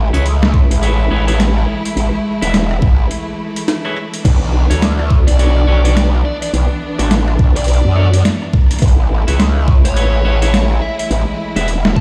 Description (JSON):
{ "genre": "glitch hop", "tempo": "105 BPM", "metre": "4/4", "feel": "swing 59% on 16ths", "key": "unclear", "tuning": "A4 = 440 Hz", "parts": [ { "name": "clear studio string section", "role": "sustained chords", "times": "0.0-12.0 s", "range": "E3 to E4", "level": "-25 LUFS", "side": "equal", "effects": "sidechain pumping" }, { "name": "growl bass", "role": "bass", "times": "0.0-11.9 s", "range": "E1 to F#2", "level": "-16 LUFS", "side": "equal", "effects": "chorus" }, { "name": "clean electric guitar", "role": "stabs", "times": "0.1-11.7 s", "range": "D4 to E5", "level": "-27 LUFS", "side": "equal", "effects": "sidechain pumping, delay" }, { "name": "boom bap sampler-style drum kit", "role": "drums", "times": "0.1-11.9 s", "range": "crash cymbal, hi-hat, rim click, snare drum", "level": "-22 LUFS", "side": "equal", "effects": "overdrive" }, { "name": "electronic kick drum", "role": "drums", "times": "0.5-12.0 s", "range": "none", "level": "-13 LUFS", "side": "equal", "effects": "overdrive" }, { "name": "bluesy overdriven lead guitar", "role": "melody", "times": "5.3-12.0 s", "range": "C#5 to A5", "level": "-26 LUFS", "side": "equal", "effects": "distortion, vintage 12-bit sampler grit, delay" } ], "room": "digital ambience", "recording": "played on a big sound system in a bare room, stone room reverb, vinyl crackle", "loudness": "-14 LUFS", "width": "mono", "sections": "0.0-12.0 A section", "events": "break 3.1-4.2", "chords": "0.0 Amaj7; 4.2 Bm9; 8.8 Amaj7", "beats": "0.25 0.82 1.39 | 1.96 2.54 3.11 3.68 | 4.25 4.82 5.39 5.96 | 6.54 7.11 7.68 8.25 | 8.82 9.39 9.96 10.54 | 11.11 11.68" }